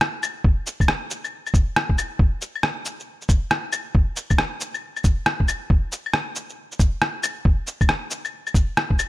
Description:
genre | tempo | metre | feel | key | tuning
future garage | 137 BPM | 4/4 | swing 64% on 16ths | none | none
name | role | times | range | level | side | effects
electronic rim click, cabasa, shaker and claves | drums | 0.0-9.1 s | none | -23 LUFS | left 1 dB | none
electronic kick drum | drums | 0.4-9.0 s | none | -18 LUFS | equal | none
room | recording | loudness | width
little or no reverb | none | -20 LUFS | side -17 dB against mid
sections
0.0-9.1 A section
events
none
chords
none

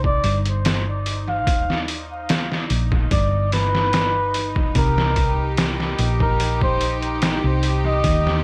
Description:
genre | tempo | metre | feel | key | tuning
trip hop | 73 BPM | 4/4 | straight | C minor | A4 = 440 Hz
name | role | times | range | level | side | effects
hollow-body short-scale fingered electric bass | bass | 0.0-8.4 s | G1 to Eb2 | -25 LUFS | equal | none
trip hop sampler-style drum kit | drums | 0.0-8.4 s | hi-hat, kick drum, snare drum | -24 LUFS | equal | vintage 12-bit sampler grit, analog delay
bowed-like drone | texture | 0.0-8.4 s | Eb4 | -34 LUFS | equal | built-in reverb
trumpet with cup mute | melody | 0.1-8.4 s | Bb4 to F5 | -26 LUFS | equal | vintage 12-bit sampler grit, dub echo
warm studio string section | sustained chords | 4.8-8.4 s | G4 | -31 LUFS | equal | none
room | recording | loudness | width
light reverb, digital ambience | echo-heavy mix, vinyl crackle | -20 LUFS | mono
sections
0.0-8.4 A section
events
none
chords
0.0 Cm; 1.5 Eb5; 3.1 G; 4.8 Cm7

